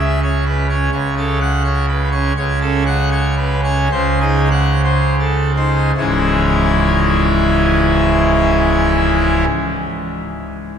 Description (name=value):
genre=classical, organ toccata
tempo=73-127 BPM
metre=3/4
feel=straight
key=C# minor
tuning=A4 = 440 Hz
part: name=pipe organ, full organ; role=solo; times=0.0-9.4 s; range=C#1 to F#5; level=-13 LUFS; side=equal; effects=none
room=wet cathedral reverb, RT60 5.2 s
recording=minimal, uncompressed stereo recording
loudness=-13 LUFS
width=side -8 dB against mid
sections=0.0-6.0 A section; 6.0-10.8 B section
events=slowing down 1.6-6.0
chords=0.0 C#m; 0.9 F#m/C#; 3.9 G#7/C#; 6.0 C#m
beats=0.46 | 0.94 1.41 1.89 | 2.36 2.86 3.37 | 3.92 4.52 5.19 | 5.96 6.79 7.60 | 8.42 9.24